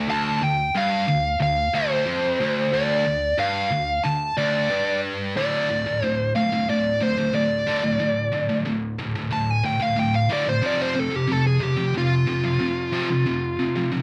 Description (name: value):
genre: metal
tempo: 91 BPM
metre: 4/4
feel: straight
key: D minor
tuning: A4 = 440 Hz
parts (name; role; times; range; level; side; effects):
- high-gain distorted guitar; riff; 0.0-14.0 s; D2 to F3; -26 LUFS; equal; distortion
- dark smooth lead guitar; melody; 0.1-13.9 s; F4 to A5; -25 LUFS; equal; overdrive, slapback echo
room: light reverb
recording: vinyl crackle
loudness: -23 LUFS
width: mono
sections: 0.0-5.4 A section; 5.4-14.0 B section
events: lead electric guitar solo 5.4-14.0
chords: 0.0 Dm; 5.4 D5; 10.6 F5